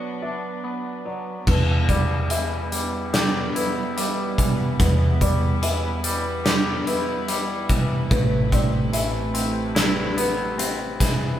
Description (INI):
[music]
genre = post-rock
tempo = 72 BPM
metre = 4/4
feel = straight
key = E minor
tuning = A4 = 440 Hz
[part]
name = dark studio string section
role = sustained chords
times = 0.0-11.4 s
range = C3 to B4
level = -30 LUFS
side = right 2 dB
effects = none
[part]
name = twangy electric guitar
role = arpeggios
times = 0.0-11.4 s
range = E2 to G4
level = -28 LUFS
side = left 2 dB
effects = harmonic tremolo
[part]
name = felt-muted upright piano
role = arpeggios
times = 0.2-11.0 s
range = B4 to E5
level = -31 LUFS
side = left 2 dB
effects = none
[part]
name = hollow-body short-scale fingered electric bass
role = bass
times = 1.5-11.4 s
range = A1 to E2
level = -25 LUFS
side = equal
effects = none
[part]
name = big rock drum kit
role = drums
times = 1.5-11.2 s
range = crash cymbal, hi-hat, kick drum, snare drum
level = -22 LUFS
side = equal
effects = none
[sound]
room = light reverb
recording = band playing live in one room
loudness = -20 LUFS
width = side -11 dB against mid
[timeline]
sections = 0.0-1.5 A section; 1.5-11.4 A section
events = none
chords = 0.0 Bm; 1.5 Em; 8.1 Amadd9